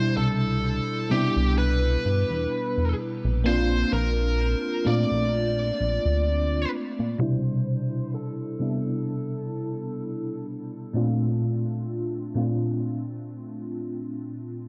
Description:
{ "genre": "vaporwave", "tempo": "64 BPM", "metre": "4/4", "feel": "swing 54% on 16ths", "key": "C major", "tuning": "A4 = 439 Hz", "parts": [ { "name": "bluesy overdriven lead guitar", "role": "melody", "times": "0.0-10.4 s", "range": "G4 to D5", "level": "-32 LUFS", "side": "equal", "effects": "distortion, tape echo" }, { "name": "FM electric piano with soft pad layer", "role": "accompaniment", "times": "0.0-14.7 s", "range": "Bb2 to F4", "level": "-29 LUFS", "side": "equal", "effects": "tremolo, analog chorus, cassette tape" }, { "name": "chorused synth bass", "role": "bass", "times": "0.2-7.2 s", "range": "Bb1 to C3", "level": "-27 LUFS", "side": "equal", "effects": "none" } ], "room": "light reverb, digital ambience", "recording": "cassette tape, low-pass filter", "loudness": "-26 LUFS", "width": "mono", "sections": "0.0-7.2 A section; 7.2-14.7 B section", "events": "filter sweep 7.2-14.7", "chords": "0.0 Cmaj7; 3.5 Bbmaj7; 7.2 Cmaj7; 11.0 Bbmaj7" }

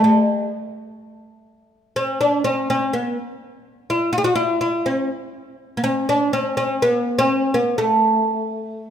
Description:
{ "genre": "arabic", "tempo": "124 BPM", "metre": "4/4", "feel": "straight", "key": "A maqam huzam", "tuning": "A4 = 440 Hz", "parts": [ { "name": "oud", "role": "solo", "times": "0.0-8.9 s", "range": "G#3-50c to G#4-50c", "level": "-18 LUFS", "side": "equal", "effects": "none" } ], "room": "light reverb", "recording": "minimal, uncompressed stereo recording", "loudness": "-18 LUFS", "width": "side -9 dB against mid", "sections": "0.0-8.9 A section", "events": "none", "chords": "none" }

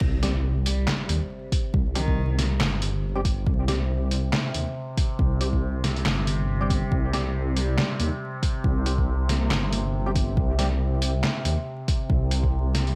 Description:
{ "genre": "deep dubstep", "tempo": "139 BPM", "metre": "4/4", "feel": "swing 57% on 16ths, half-time", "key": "C minor", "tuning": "A4 = 440 Hz", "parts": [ { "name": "overtone-sweeping drone", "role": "sustained chords", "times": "0.6-13.0 s", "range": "C3", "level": "-36 LUFS", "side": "equal", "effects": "chorus, built-in reverb" }, { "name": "dark detuned saw bass", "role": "bass", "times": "0.0-12.9 s", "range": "G1 to Eb2", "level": "-27 LUFS", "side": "equal", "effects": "none" }, { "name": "electronic kick drum", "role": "drums", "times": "0.0-12.5 s", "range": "none", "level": "-26 LUFS", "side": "equal", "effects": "high-pass filter on kick" }, { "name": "impact", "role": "sound effects", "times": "0.0-1.7 s", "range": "none", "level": "-40 LUFS", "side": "equal", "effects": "none" }, { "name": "percussive organ stab", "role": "stabs", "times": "0.2-10.7 s", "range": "G3 to G4", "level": "-36 LUFS", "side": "equal", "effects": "ensemble chorus, dub echo" }, { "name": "trip hop sampler-style drum kit", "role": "drums", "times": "0.2-12.9 s", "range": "handclaps, hi-hat, snare drum", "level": "-30 LUFS", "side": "equal", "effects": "none" }, { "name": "dark cello", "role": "melody", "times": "0.7-2.4, 7.6-9.7 s", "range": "Eb3 to Bb3", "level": "-37 LUFS", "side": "equal", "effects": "dub echo" } ], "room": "light reverb, digital ambience", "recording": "vinyl crackle", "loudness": "-25 LUFS", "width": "mono", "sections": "0.0-13.0 A section", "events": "drop 0.0-13.0; impact 0.0-1.7", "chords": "0.0 C5" }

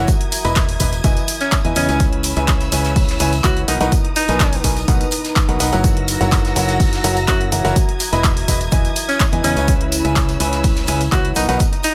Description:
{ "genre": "piano house", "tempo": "125 BPM", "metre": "4/4", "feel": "straight", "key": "unclear", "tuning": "A4 = 439 Hz", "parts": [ { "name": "dark studio string section", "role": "sustained chords", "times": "0.0-11.9 s", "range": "B4 to A#6", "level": "-31 LUFS", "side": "equal", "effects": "sidechain pumping" }, { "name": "clear grand piano", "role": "riff", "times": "0.0-11.6 s", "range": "B2 to B5", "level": "-24 LUFS", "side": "equal", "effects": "sidechain pumping, delay" }, { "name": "fingered electric bass", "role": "bass", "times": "0.0-11.6 s", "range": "E1 to F#2", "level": "-24 LUFS", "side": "equal", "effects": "tube saturation, sidechain pumping" }, { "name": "deep dark ambient pad", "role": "texture", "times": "0.2-11.9 s", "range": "D#4 to B5", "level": "-31 LUFS", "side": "equal", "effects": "chorus, built-in reverb, sidechain pumping" }, { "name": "electronic kick drum", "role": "drums", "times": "0.1-11.7 s", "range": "none", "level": "-20 LUFS", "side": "equal", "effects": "none" }, { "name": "loose indie drum kit", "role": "drums", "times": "0.1-11.9 s", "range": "hi-hat, shaker, snare drum", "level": "-35 LUFS", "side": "equal", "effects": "none" }, { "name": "punchy analog drum machine", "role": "drums", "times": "0.1-11.9 s", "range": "handclaps, hi-hat, tambourine", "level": "-25 LUFS", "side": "equal", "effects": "overdrive" }, { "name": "tambourine", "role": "percussion", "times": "0.1-11.9 s", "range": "none", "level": "-34 LUFS", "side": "equal", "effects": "none" }, { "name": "clear alto saxophone", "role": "melody", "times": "1.4-11.9 s", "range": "C#4 to F#4", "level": "-26 LUFS", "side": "equal", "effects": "delay" } ], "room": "studio ambience", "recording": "none", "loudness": "-17 LUFS", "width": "mono", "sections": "0.0-11.9 A section", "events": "none", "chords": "0.1 Emaj7; 2.0 C#m7; 3.7 Bmaj7; 5.8 F#7; 7.8 Emaj7; 9.7 C#m7; 11.4 Bmaj7" }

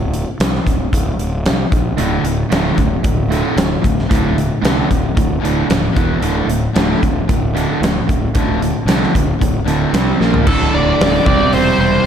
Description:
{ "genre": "hard rock", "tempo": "113 BPM", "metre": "4/4", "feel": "straight", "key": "unclear", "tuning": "A4 = 436 Hz", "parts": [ { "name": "fuzz fingered electric bass", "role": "bass", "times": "0.0-12.1 s", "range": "D1 to C2", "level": "-20 LUFS", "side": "left 1 dB", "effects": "overdrive" }, { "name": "big rock drum kit", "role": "drums", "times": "0.1-11.6 s", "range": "crash cymbal, hi-hat, kick drum, snare drum, toms", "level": "-17 LUFS", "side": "equal", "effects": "none" }, { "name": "distorted electric guitar", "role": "riff", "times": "2.0-12.1 s", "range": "D2 to C4", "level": "-21 LUFS", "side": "left 8 dB", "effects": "distortion, slapback echo" }, { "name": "overdriven semi-hollow guitar", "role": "riff", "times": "2.0-12.1 s", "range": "D2 to C4", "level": "-19 LUFS", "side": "right 9 dB", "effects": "none" }, { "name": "high-gain lead guitar", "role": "melody", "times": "10.5-12.1 s", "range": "A4 to D5", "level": "-16 LUFS", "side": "left 1 dB", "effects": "distortion, slapback echo" }, { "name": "sludgy distorted guitar", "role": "riff", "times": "10.5-12.0 s", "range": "D2 to C4", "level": "-24 LUFS", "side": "equal", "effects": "overdrive, slapback echo" } ], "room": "light reverb", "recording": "none", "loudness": "-13 LUFS", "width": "side -8 dB against mid", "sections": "0.0-10.5 A section; 10.5-12.1 B section", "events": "drum fill 10.2", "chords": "0.0 Csus2/D; 1.5 N.C.; 2.0 D5; 6.0 E5; 6.2 D5; 9.9 C5; 10.2 Bb5; 10.5 D5; 11.2 C/E" }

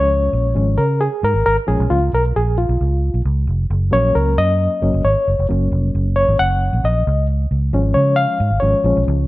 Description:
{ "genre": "uptempo 1960s-style soul", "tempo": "134 BPM", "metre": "4/4", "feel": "straight", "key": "unclear", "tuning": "A4 = 440 Hz", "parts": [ { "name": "barky reed electric piano", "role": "accompaniment", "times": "0.0-9.3 s", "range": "E#3 to F#5", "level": "-17 LUFS", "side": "left 1 dB", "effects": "overdrive, fast tremolo" }, { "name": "vintage muted fingered electric bass", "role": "bass", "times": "0.0-9.3 s", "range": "E#1 to C#3", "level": "-17 LUFS", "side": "equal", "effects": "none" } ], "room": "light reverb", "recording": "dark, warm production", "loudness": "-14 LUFS", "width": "side -18 dB against mid", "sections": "0.0-9.3 A section", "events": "reed electric piano solo 0.0-9.3", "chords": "0.0 C#; 3.7 F#; 7.1 C#" }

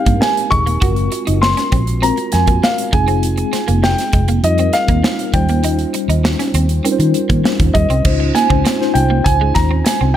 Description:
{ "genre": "polished 1980s jazz-funk pop", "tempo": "100 BPM", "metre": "4/4", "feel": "straight", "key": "unclear", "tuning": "A4 = 443 Hz", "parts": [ { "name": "dark concert grand piano", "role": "melody", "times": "0.0-10.2 s", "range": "Eb5 to Db6", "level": "-18 LUFS", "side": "right 1 dB", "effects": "none" }, { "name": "mellow tine electric piano", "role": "accompaniment", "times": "0.0-10.2 s", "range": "G3 to C5", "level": "-20 LUFS", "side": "left 2 dB", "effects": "medium stereo tremolo, analog chorus" }, { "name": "electric guitar at the edge of break-up", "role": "riff", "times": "0.1-10.1 s", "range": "G3 to Gb4", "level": "-24 LUFS", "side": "right 4 dB", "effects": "analog chorus" }, { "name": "vintage muted fingered electric bass", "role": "bass", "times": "0.1-10.1 s", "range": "Eb1 to Eb3", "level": "-16 LUFS", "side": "equal", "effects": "none" }, { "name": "modern studio drum kit", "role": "drums", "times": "0.1-10.0 s", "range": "crash cymbal, hi-hat, kick drum, snare drum", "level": "-18 LUFS", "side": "equal", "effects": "gated reverb" } ], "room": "light reverb, small room ambience", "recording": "none", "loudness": "-12 LUFS", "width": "side -11 dB against mid", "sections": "0.0-8.1 A section; 8.1-10.2 B section", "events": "none", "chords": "0.0 Abmaj9; 0.8 Gbmaj9#11; 2.9 Fm9; 5.3 Eb13; 8.1 Dbmaj9" }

